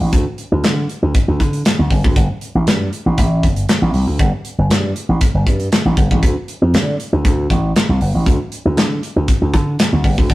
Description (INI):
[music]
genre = early-eighties boogie funk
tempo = 118 BPM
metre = 4/4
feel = straight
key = unclear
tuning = A4 = 435 Hz
[part]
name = slap bass with an envelope filter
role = bass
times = 0.0-10.3 s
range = G1 to D3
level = -16 LUFS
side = equal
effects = none
[part]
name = modern studio drum kit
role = drums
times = 0.1-10.3 s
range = handclaps, hi-hat, kick drum, snare drum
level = -16 LUFS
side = equal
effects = none
[sound]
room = light reverb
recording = rough rehearsal-room recording, warm saturation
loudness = -13 LUFS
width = side -17 dB against mid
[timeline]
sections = 0.0-10.3 A section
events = none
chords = none